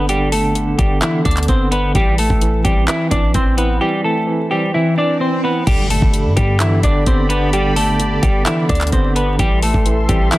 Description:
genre	hip hop, trap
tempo	129 BPM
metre	4/4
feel	half-time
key	G major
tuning	A4 = 440 Hz
part	semi-hollow electric guitar	melody	0.0-10.4 s	E3 to D5	-18 LUFS	equal	none
part	bright tine electric piano	accompaniment	0.0-10.4 s	D3 to E4	-21 LUFS	right 2 dB	medium tremolo
part	warm 808-style bass	bass	0.0-10.3 s	G1 to G2	-18 LUFS	equal	none
part	trap drum kit	drums	0.1-10.4 s	crash cymbal, handclaps, hi-hat, kick drum	-18 LUFS	equal	none
part	swell and impact	sound effects	4.3-7.5 s	none	-27 LUFS	right 1 dB	none
part	sweeping resonant pad	sustained chords	5.7-10.4 s	G4 to C6	-26 LUFS	equal	chorus
room	light reverb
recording	dense, heavily limited modern master, vinyl crackle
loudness	-13 LUFS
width	side -17 dB against mid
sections	0.0-5.7 A section; 5.7-10.4 B section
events	swell 4.3-5.7; impact 5.7-7.5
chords	0.0 G; 1.9 Am; 5.7 G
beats	| 0.09 0.56 1.02 1.49 | 1.95 2.42 2.88 3.35 | 3.81 4.28 4.74 5.21 | 5.67 6.14 6.60 7.07 | 7.53 8.00 8.46 8.93 | 9.39 9.86 10.32

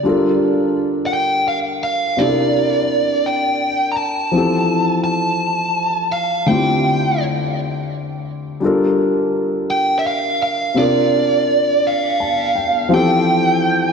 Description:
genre	R&B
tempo	56 BPM (dotted quarters)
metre	6/8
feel	straight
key	F major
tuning	A4 = 436 Hz
part	warm grand piano	accompaniment	0.0-13.9 s	C3 to A5	-18 LUFS	left 2 dB	none
part	biting lead guitar	melody	1.1-13.9 s	D5 to Bb5	-17 LUFS	right 2 dB	overdrive, tape echo
room	wet lush hall reverb, RT60 2.8 s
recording	dreamy mix soaked in reverb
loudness	-15 LUFS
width	side -6 dB against mid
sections	0.0-12.9 A section; 12.9-13.9 B section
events	grand piano fill 11.8-12.9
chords	0.0 Gm9; 2.2 C9; 4.3 Fmaj9; 6.5 Dm11; 8.6 Gm9; 10.8 C9sus4; 12.9 Fmaj9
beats	| 0.05 1.12 | 2.19 3.26 | 4.33 5.40 | 6.48 7.55 | 8.62 9.69 | 10.76 11.83 | 12.90

